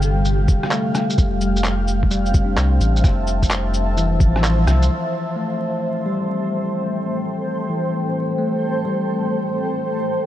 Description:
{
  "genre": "future garage",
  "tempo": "129 BPM",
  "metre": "4/4",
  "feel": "swing 66% on 16ths",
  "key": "A minor",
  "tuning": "A4 = 440 Hz",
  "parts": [
    { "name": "bell-like tine electric piano", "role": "accompaniment", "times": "0.0-10.3 s", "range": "C3 to D4", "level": "-23 LUFS", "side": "left 2 dB", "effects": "sidechain pumping, tape echo" },
    { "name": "granular cloud pad", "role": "sustained chords", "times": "0.0-10.3 s", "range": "G3 to A5", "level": "-24 LUFS", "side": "right 1 dB", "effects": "built-in reverb, sidechain pumping" },
    { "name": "soft dub sub bass", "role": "bass", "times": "0.0-4.9 s", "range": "F1 to C2", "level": "-19 LUFS", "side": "equal", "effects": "sidechain pumping" },
    { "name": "electronic cabasa, shaker, rim click and handclaps", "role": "drums", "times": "0.0-4.9 s", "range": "none", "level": "-26 LUFS", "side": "equal", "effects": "vintage 12-bit sampler grit" },
    { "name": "electronic kick drum", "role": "drums", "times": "0.5-4.3 s", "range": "none", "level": "-16 LUFS", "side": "equal", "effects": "vintage 12-bit sampler grit" }
  ],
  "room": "light reverb, digital ambience",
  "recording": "vinyl crackle, nothing above 11.0 kHz",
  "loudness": "-17 LUFS",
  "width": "side -12 dB against mid",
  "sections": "0.0-4.9 A section; 4.9-10.3 B section",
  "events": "filter sweep on tine electric piano 0.0-4.9; band accent 4.4",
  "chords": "0.0 G7(no3); 1.2 Fmaj7; 4.9 Am7",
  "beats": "0.25 0.72 | 1.18 1.65 2.11 2.58 | 3.04 3.51 3.97 4.44 | 4.90 5.37 5.83 6.30 | 6.76 7.23 7.69 8.16 | 8.62 9.09 9.55 10.02"
}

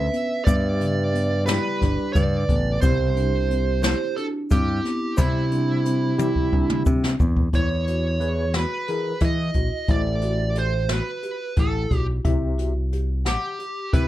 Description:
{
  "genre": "progressive instrumental, band music in an uneven meter",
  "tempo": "178 BPM (eighths)",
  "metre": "7/8",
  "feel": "straight",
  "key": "unclear",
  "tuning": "A4 = 440 Hz",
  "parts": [
    { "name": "smooth overdriven lead guitar", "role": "melody", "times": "0.0-14.1 s", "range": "E4 to E5", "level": "-27 LUFS", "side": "right 4 dB", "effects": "none" },
    { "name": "vibraphone with soft mallets", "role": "second line", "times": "0.0-6.8 s", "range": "C4 to B4", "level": "-31 LUFS", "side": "right 4 dB", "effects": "analog delay" },
    { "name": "marimba with soft mallets", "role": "arpeggios", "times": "0.0-14.1 s", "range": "C#3 to F#5", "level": "-29 LUFS", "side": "left 2 dB", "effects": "none" },
    { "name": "modern bright picked electric bass", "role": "bass", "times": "0.0-14.1 s", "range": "G1 to E3", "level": "-24 LUFS", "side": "equal", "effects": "none" },
    { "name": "jazz brush drum kit", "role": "drums", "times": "0.1-14.1 s", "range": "hi-hat, kick drum, snare drum, toms", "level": "-23 LUFS", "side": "equal", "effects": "none" },
    { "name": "overdriven tine electric piano", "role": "accompaniment", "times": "0.5-12.7 s", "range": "C3 to E5", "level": "-29 LUFS", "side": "left 3 dB", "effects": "fast tremolo" },
    { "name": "egg shaker", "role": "percussion", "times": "0.5-7.4 s", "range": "none", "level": "-41 LUFS", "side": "left 7 dB", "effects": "none" }
  ],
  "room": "light reverb",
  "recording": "dark, warm production",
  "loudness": "-20 LUFS",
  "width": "side -14 dB against mid",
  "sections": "0.0-7.5 A section; 7.5-14.1 B section",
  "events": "drum fill 6.2-7.5",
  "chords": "0.0 G; 2.8 C; 7.5 E; 9.9 Am; 12.3 C",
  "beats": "0.14 | 0.47 0.81 1.15 1.48 1.82 2.16 2.49 | 2.83 3.17 3.50 3.84 4.17 4.51 4.85 | 5.18 5.52 5.86 6.19 6.53 6.86 7.20 | 7.54 7.87 8.21 8.55 8.88 9.22 9.56 | 9.89 10.23 10.57 10.90 11.24 11.58 11.91 | 12.25 12.59 12.93 13.26 13.60 13.94"
}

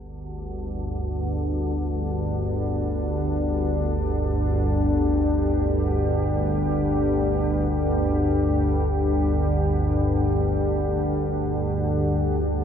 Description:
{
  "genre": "dark ambient drone",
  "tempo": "free time",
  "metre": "none",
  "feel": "none",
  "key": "unclear",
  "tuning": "A4 = 445 Hz",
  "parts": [
    { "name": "deep dark ambient pad", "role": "sustained chords", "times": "1.0-12.6 s", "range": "G3 to G4", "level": "-26 LUFS", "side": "left 2 dB", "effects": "chorus, built-in reverb" },
    { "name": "organ-like drone", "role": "drone", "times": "0.1-12.6 s", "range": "G1 to D2", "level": "-23 LUFS", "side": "right 1 dB", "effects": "ensemble chorus, built-in reverb" },
    { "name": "quartz singing bowl", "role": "texture", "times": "0.0-12.6 s", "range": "none", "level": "barely audible", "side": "none", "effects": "none" }
  ],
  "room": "moderate huge ambient reverb, RT60 8.2 s",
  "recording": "worn, warbling old tape, cassette tape, warbly pitch drift",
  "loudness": "-21 LUFS",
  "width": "side -8 dB against mid",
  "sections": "0.0-12.6 A section",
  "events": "none",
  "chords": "0.0 G5",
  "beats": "free time"
}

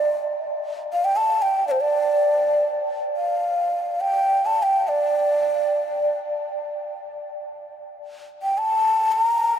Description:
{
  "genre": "Persian modal ensemble",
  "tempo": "free time",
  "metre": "none",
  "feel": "none",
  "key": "D dastgah shur",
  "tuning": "A4 = 440 Hz",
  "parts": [
    { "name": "breathy mellow ney", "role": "solo", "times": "0.0-9.6 s", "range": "C5 to Bb5", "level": "-20 LUFS", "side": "equal", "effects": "diffuse ambient delay" }
  ],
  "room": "wet huge ambient reverb, RT60 8.9 s",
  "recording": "dreamy mix soaked in reverb",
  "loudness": "-19 LUFS",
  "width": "side -9 dB against mid",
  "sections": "0.0-8.0 A section; 8.0-9.6 A section",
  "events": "none",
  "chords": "none",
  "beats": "free time"
}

